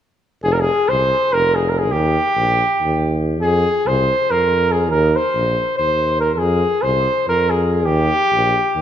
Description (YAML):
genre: balkan folk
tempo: 282 BPM (eighths)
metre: 7/8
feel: straight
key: F minor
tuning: A4 = 441 Hz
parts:
  - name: mellow trumpet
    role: melody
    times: 0.4-8.8 s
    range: G4 to C5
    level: -16 LUFS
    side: equal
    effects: none
  - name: warm tuba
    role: bass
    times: 0.4-8.8 s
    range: F1 to F2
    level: -20 LUFS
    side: equal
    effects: none
room: moderate concert hall reverb, RT60 2.2 s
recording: none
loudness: -15 LUFS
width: side -10 dB against mid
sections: 0.4-8.8 A section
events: none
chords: 0.4 F5; 1.9 Eb; 3.4 Fm; 4.9 Eb5; 6.4 Fm; 7.9 Eb